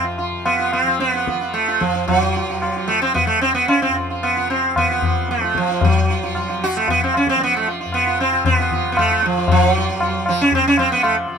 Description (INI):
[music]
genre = indian classical, Hindustani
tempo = 114 BPM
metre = 7/4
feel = straight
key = unclear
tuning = A4 = 440 Hz
[part]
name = sitar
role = melody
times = 0.0-11.2 s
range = F3 to Gb4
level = -17 LUFS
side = right 2 dB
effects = none
[part]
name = tanpura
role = drone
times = 0.0-11.4 s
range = F2 to F3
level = -28 LUFS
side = left 2 dB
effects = none
[part]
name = tabla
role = percussion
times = 0.2-11.4 s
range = none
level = -21 LUFS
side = left 3 dB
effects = none
[sound]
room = light reverb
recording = minimal, uncompressed stereo recording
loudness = -16 LUFS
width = side -6 dB against mid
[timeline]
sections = 0.0-11.4 A section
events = speeding up 0.0-11.4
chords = none